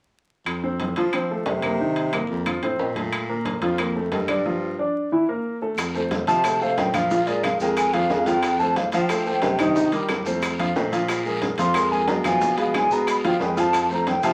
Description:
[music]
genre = Afro-Cuban jazz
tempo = 181 BPM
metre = 4/4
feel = straight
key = F mixolydian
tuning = A4 = 440 Hz
[part]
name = warm baritone saxophone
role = bass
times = 0.5-14.3 s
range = F2 to F3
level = -30 LUFS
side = equal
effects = none
[part]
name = claves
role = percussion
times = 0.5-13.9 s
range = none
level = -35 LUFS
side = equal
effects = none
[part]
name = congas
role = percussion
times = 0.5-14.3 s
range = none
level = -37 LUFS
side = equal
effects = none
[part]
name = timbales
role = percussion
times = 0.5-14.3 s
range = none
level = -33 LUFS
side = equal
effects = none
[part]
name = clear baby grand piano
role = accompaniment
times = 0.6-14.3 s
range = Eb3 to F5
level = -26 LUFS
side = equal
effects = none
[part]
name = bongos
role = percussion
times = 5.8-14.3 s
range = none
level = -36 LUFS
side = equal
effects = none
[part]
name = guiro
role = percussion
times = 5.8-14.3 s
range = none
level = -41 LUFS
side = equal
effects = none
[part]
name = maracas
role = percussion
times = 5.8-14.3 s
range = none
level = -44 LUFS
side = equal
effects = none
[part]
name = breathy concert flute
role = melody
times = 6.3-14.3 s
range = D5 to C6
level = -25 LUFS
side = equal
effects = none
[sound]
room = wet club reverb, RT60 0.5 s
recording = vinyl crackle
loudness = -23 LUFS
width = mono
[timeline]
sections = 0.5-5.8 A section; 5.8-14.3 B section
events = none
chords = 0.5 F; 1.8 Cm7; 2.5 F; 3.1 Bbmaj7; 4.4 G5; 5.1 Esus4; 5.8 F; 7.1 Bb5; 8.4 F9; 9.8 Cm7; 10.4 F; 11.1 Bbsus2; 12.4 Fdim; 13.7 Fadd9

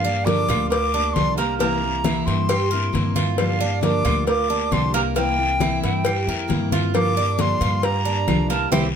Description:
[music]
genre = latin, Cuban son and guajira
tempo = 135 BPM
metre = 4/4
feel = straight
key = unclear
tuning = A4 = 441 Hz
[part]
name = silver concert flute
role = melody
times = 0.0-8.9 s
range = F5 to D6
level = -25 LUFS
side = left 2 dB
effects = none
[part]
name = flamenco guitar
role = second line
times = 0.0-8.9 s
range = C4 to Bb4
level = -30 LUFS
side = right 7 dB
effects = none
[part]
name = picked steel-string acoustic guitar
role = accompaniment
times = 0.0-8.9 s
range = C3 to G4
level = -26 LUFS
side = left 4 dB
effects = none
[part]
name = Cuban tres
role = arpeggios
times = 0.0-8.9 s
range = Bb3 to Bb4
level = -27 LUFS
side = right 9 dB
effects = none
[part]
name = upright bass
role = bass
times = 0.0-8.9 s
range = C2 to G2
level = -25 LUFS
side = equal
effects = none
[part]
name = congas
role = percussion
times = 0.1-8.8 s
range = none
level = -27 LUFS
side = equal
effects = none
[part]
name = cowbell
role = percussion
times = 0.3-8.8 s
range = none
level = -28 LUFS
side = left 4 dB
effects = none
[part]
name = guiro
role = percussion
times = 0.3-8.8 s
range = none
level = -34 LUFS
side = left 6 dB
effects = none
[part]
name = claves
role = percussion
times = 0.5-8.8 s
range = none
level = -35 LUFS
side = right 5 dB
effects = none
[sound]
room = moderate studio reverb, RT60 0.8 s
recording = none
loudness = -18 LUFS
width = side -7 dB against mid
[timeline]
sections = 0.0-9.0 A section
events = band accent 8.7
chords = 0.0 Gm7; 1.6 C7; 3.4 Gm7; 5.2 C7; 6.9 Gm7

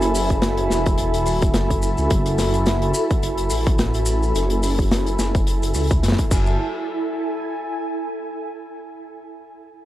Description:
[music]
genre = glitch hop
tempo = 107 BPM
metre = 4/4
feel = swing 56% on 16ths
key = F# minor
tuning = A4 = 441 Hz
[part]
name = dark analog pad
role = sustained chords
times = 0.0-6.6 s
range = F#4 to B5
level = -26 LUFS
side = equal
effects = chorus, sidechain pumping
[part]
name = phased detuned saw bass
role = bass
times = 0.0-6.6 s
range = E1 to F#2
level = -22 LUFS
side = equal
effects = phaser, tube saturation
[part]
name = modern studio drum kit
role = drums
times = 0.0-6.4 s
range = crash cymbal, hi-hat, rim click, snare drum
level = -26 LUFS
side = left 1 dB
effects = none
[part]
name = maracas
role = percussion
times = 0.0-6.6 s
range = none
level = -33 LUFS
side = left 2 dB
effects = none
[part]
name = ethereal airy pad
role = texture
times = 0.0-8.8 s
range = E4 to G#5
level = -27 LUFS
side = right 1 dB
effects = ensemble chorus, built-in reverb, sidechain pumping
[part]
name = electronic kick drum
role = drums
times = 0.3-6.4 s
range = none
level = -20 LUFS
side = equal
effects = none
[sound]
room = light reverb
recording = dry, gritty hardware recording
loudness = -18 LUFS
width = side -14 dB against mid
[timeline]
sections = 0.0-6.6 A section; 6.6-8.8 B section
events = filter sweep on detuned saw bass 0.0-6.6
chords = 0.0 F#m9; 6.6 Eadd11

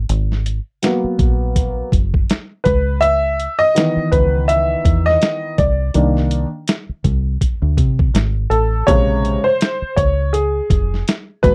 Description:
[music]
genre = hip hop, jazz-hop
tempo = 82 BPM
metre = 4/4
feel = swing 57% on 16ths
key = unclear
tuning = A4 = 441 Hz
[part]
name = deep dub fingered electric bass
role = bass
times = 0.0-11.5 s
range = F1 to C3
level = -20 LUFS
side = equal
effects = none
[part]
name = boom bap sampler-style drum kit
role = drums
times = 0.1-11.5 s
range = hi-hat, kick drum, snare drum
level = -20 LUFS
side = equal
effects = none
[part]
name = warm upright piano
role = accompaniment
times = 0.8-11.5 s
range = C3 to Fb5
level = -19 LUFS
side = equal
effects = none
[sound]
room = little or no reverb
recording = dry, close 1970s-style studio recording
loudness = -17 LUFS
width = mono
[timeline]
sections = 0.0-8.9 A section; 8.9-11.5 A section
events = upright piano solo 0.0-8.9, 8.9-11.5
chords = 0.0 Abm9; 2.7 Dbm9; 5.6 Cm9; 8.9 Bbm9

